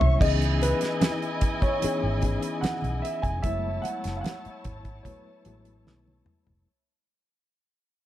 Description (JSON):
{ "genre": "lush 1970s-style soul", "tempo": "74 BPM", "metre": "4/4", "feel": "straight", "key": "C# minor", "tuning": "A4 = 436 Hz", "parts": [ { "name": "dark grand piano", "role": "melody", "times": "0.0-6.2 s", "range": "B4 to G#5", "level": "-31 LUFS", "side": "right 1 dB", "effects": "none" }, { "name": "muted studio string section", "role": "second line", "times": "0.0-6.6 s", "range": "E4 to C#6", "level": "-34 LUFS", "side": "left 1 dB", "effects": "none" }, { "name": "bright reed electric piano", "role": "accompaniment", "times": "0.0-6.7 s", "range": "E3 to B4", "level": "-32 LUFS", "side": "left 4 dB", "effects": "overdrive, medium tremolo" }, { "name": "vintage muted fingered electric bass", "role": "bass", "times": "0.0-6.6 s", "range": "E#1 to C#2", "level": "-27 LUFS", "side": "equal", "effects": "none" }, { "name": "damped 70s drum kit", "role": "drums", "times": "0.0-6.7 s", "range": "crash cymbal, hi-hat, kick drum, snare drum, toms", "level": "-27 LUFS", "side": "equal", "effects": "none" }, { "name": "congas", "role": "percussion", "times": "0.0-6.3 s", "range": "none", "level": "-38 LUFS", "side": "right 4 dB", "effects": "none" } ], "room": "studio ambience", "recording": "dark, warm production", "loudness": "-24 LUFS", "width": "side -13 dB against mid", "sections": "0.2-6.7 A section", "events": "drum fill 0.0, 5.9-6.7; fade-out 0.2-6.7", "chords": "0.2 C#m9; 3.4 F#m11", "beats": "| 0.20 1.01 1.82 2.63 | 3.43 4.24 5.05 5.86" }